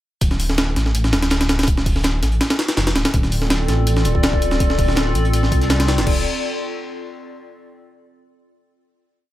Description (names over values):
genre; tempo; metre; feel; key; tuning
drum and bass, jungle; 164 BPM; 4/4; straight; D minor; A4 = 440 Hz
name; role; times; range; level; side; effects
dark detuned saw bass; bass; 0.2-6.2 s; D1 to C2; -20 LUFS; equal; none
breakbeat sampler-style drum kit; drums; 0.2-6.1 s; crash cymbal, hi-hat, kick drum, snare drum; -19 LUFS; equal; studio ambience
crunchy breakbeat drum kit; drums; 0.2-6.0 s; hi-hat, snare drum; -32 LUFS; right 2 dB; high-pass filter on hats, studio ambience, high-pass filter on snare, high-pass filter on room
room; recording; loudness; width
small room ambience; none; -16 LUFS; side -14 dB against mid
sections
0.2-6.1 drop; 6.1-7.5 final chord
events
drop 0.2-6.1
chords
none